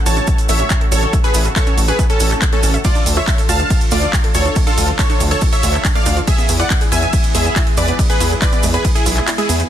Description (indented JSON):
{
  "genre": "uplifting trance",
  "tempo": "140 BPM",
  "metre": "4/4",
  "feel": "straight",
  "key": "unclear",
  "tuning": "A4 = 442 Hz",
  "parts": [
    { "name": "lush unison pad", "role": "sustained chords", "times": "0.0-9.7 s", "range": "B2 to A4", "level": "-26 LUFS", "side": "left 1 dB", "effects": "chorus, sidechain pumping" },
    { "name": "supersaw stab", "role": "melody", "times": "0.1-9.6 s", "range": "C#4 to A5", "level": "-20 LUFS", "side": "equal", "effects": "sidechain pumping, dub echo" },
    { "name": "analog pluck", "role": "second line", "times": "0.1-9.6 s", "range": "G#4 to A5", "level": "-27 LUFS", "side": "equal", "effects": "chorus, vintage 12-bit sampler grit, sidechain pumping, dub echo" },
    { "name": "wide unison pluck", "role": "arpeggios", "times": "0.1-9.6 s", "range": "G#3 to E5", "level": "-26 LUFS", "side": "right 5 dB", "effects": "sidechain pumping, dub echo" },
    { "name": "gritty driven synth bass", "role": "bass", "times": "0.1-9.6 s", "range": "A1 to E2", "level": "-18 LUFS", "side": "equal", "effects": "sidechain pumping" },
    { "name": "house drum kit", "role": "drums", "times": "0.1-9.7 s", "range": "handclaps, hi-hat, ride cymbal", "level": "-22 LUFS", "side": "equal", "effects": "sidechain pumping on hats, small room ambience, sidechain pumping on cymbals" },
    { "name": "cabasa", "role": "percussion", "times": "0.1-9.7 s", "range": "none", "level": "-26 LUFS", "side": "right 6 dB", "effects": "none" },
    { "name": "electronic kick drum", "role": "drums", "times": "0.3-8.9 s", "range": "none", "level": "-16 LUFS", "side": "equal", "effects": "small room ambience" }
  ],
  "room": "digital ambience",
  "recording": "dense, heavily limited modern master",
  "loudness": "-12 LUFS",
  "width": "side -10 dB against mid",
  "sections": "0.0-9.7 A section",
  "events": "drop 0.0-9.7; kick drops out 9.3-9.7",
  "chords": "0.0 A; 2.8 Dm; 6.3 E"
}